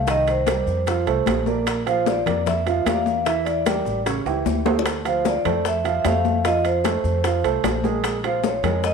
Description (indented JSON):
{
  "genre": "Afro-Cuban jazz",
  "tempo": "151 BPM",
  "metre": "4/4",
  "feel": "straight",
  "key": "F major",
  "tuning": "A4 = 440 Hz",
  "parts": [
    { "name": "vibraphone with medium mallets", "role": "melody", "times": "0.0-8.9 s", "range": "C5 to F5", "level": "-24 LUFS", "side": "left 1 dB", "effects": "none" },
    { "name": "upright bass", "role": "bass", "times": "0.0-8.9 s", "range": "A1 to F2", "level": "-26 LUFS", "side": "left 1 dB", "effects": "none" },
    { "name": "warm baby grand piano", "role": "accompaniment", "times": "0.1-8.9 s", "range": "C#3 to F5", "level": "-24 LUFS", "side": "right 9 dB", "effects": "none" },
    { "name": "bongos", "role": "percussion", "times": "0.1-8.9 s", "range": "none", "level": "-30 LUFS", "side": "left 11 dB", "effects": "none" },
    { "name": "congas", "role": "percussion", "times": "0.1-8.9 s", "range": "none", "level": "-28 LUFS", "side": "left 12 dB", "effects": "none" },
    { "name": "maracas", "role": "percussion", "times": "0.1-8.9 s", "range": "none", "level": "-41 LUFS", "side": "left 13 dB", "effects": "none" },
    { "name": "timbales", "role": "percussion", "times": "0.1-8.8 s", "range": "none", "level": "-30 LUFS", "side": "right 10 dB", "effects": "none" }
  ],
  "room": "moderate echo chamber reverb, RT60 1.5 s, small room ambience",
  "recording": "1960s-style stereo with parts hard left and right",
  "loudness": "-19 LUFS",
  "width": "side -5 dB against mid",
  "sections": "0.0-8.9 A section",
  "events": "drum fill 4.3-4.9",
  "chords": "0.1 Cm7; 0.9 F; 1.7 Bb; 3.3 Em7b5; 4.1 A7; 4.9 Dm7; 6.5 F; 8.0 Bbm7"
}